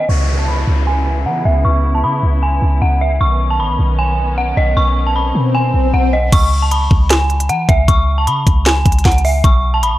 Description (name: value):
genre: hip hop, trap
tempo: 154 BPM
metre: 4/4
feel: half-time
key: C# minor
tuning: A4 = 440 Hz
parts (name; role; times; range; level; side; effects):
- dark detuned synth bell; melody; 0.0-10.0 s; D#5 to C#6; -17 LUFS; equal; chorus, low-pass filter
- muted studio string section; sustained chords; 0.0-6.3 s; C#3 to E4; -24 LUFS; equal; low-pass filter
- clean 808-style bass; bass; 0.1-10.0 s; A1 to E3; -14 LUFS; equal; none
- downlifter and swell; sound effects; 0.1-6.3 s; none; -22 LUFS; left 3 dB; none
- trap drum kit; drums; 6.3-9.9 s; crash cymbal, hi-hat, kick drum, snare drum; -14 LUFS; equal; none
room: digital ambience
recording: dry, gritty hardware recording, transformer saturation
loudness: -12 LUFS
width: side -15 dB against mid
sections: 0.1-6.3 A section; 6.3-10.0 B section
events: filter sweep 0.1-6.3; swell 5.1-6.3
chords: 0.1 C#m7; 3.2 Badd9; 6.3 C#7(no3); 9.4 Aadd9